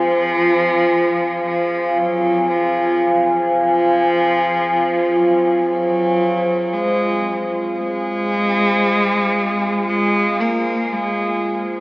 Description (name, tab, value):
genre	ambient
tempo	57 BPM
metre	4/4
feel	straight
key	F phrygian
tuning	A4 = 435 Hz
part	rich cello	melody	0.0-11.7 s	F3 to Bb3	-19 LUFS	equal	shimmer reverb, diffuse ambient delay
part	dark analog pad	sustained chords	0.0-11.8 s	F4 to Ab5	-17 LUFS	equal	chorus, phaser, shimmer reverb
room	wet cathedral reverb, RT60 6.5 s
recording	in a vast, echoing space, AM radio sound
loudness	-15 LUFS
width	side -22 dB against mid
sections	0.0-11.8 A section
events	none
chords	0.0 Fm